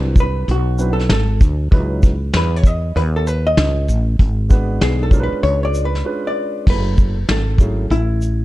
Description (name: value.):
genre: hip hop, jazz-hop.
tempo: 97 BPM.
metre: 4/4.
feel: swing 64% on 16ths.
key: F# minor.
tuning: A4 = 443 Hz.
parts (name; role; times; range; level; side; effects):
dark upright piano; accompaniment; 0.0-7.8 s; F#3 to B4; -25 LUFS; right 2 dB; none.
woody fretless electric bass; bass; 0.0-8.4 s; F#1 to E2; -18 LUFS; equal; none.
hollow-body jazz guitar; melody; 0.2-8.4 s; E4 to D#5; -22 LUFS; left 1 dB; none.
vintage brush drum kit; drums; 0.2-8.4 s; crash cymbal, hi-hat, kick drum, shaker, snare drum; -15 LUFS; equal; none.
room: studio reverb.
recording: dark, warm production.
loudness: -14 LUFS.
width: side -17 dB against mid.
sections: 0.0-6.7 A section; 6.7-8.4 B section.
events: hollow-body jazz guitar solo 0.0-6.7; break 6.0-6.7.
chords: 0.0 D13; 1.7 C#m11; 4.2 G#m7b5; 5.4 C#7b9; 6.7 F#m9.